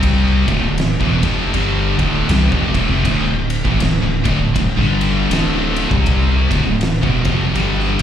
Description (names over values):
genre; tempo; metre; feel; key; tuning
stoner and doom metal; 80 BPM; 4/4; swing 60% on 8ths; D minor; A4 = 440 Hz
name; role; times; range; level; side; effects
scooped high-gain guitar; riff; 0.0-8.0 s; D2 to C4; -21 LUFS; equal; distortion, slapback echo
thick fuzz guitar; riff; 0.0-8.0 s; D2 to C4; -20 LUFS; left 7 dB; distortion
thick fuzz guitar; riff; 0.0-8.0 s; D2 to C4; -22 LUFS; right 8 dB; distortion, slapback echo
punchy sub bass; bass; 0.0-8.0 s; D1 to C2; -20 LUFS; equal; overdrive
oversized low-tuned drum kit; drums; 0.0-8.0 s; kick drum, ride cymbal, snare drum; -20 LUFS; equal; none
room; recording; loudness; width
light reverb; live gig heard through the venue's PA, club reverb; -14 LUFS; side -9 dB against mid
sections
0.0-8.0 A section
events
none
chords
0.0 Dm